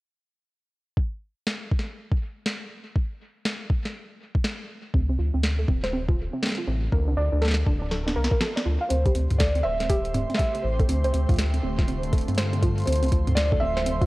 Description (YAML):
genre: IDM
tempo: 121 BPM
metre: 4/4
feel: swing 62% on 16ths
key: unclear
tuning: A4 = 441 Hz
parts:
  - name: electronic kick drum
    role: drums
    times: 1.0-14.1 s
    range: none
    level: -23 LUFS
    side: equal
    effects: none
  - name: booming analog drum machine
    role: drums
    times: 1.5-14.1 s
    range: hi-hat, snare drum, toms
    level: -30 LUFS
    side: equal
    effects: none
  - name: warbly dusty pluck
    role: arpeggios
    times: 4.9-14.1 s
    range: C4 to F5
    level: -30 LUFS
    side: right 2 dB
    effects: chorus, digital delay
  - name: round analog bass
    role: bass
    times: 4.9-14.1 s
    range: D1 to G2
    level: -25 LUFS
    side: equal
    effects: none
  - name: felt-muted upright piano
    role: melody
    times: 8.9-14.1 s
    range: C5 to E5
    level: -28 LUFS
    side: equal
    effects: none
  - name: warbly tape-like pad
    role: sustained chords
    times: 9.7-14.1 s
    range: D3 to G4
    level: -34 LUFS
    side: equal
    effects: chorus, built-in reverb, vintage 12-bit sampler grit
  - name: twinkling granular texture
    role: texture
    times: 9.4-14.1 s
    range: C5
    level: -37 LUFS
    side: right 2 dB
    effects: built-in reverb, sidechain pumping
room: light reverb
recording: worn, warbling old tape, cassette tape, warbly pitch drift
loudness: -22 LUFS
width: side -20 dB against mid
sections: 1.0-8.9 A section; 8.9-14.1 B section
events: drum fill 7.9-8.9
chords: 1.0 N.C.; 4.9 F; 6.9 Bbmaj7; 8.9 Am7; 10.9 Dm7; 12.9 Fmaj7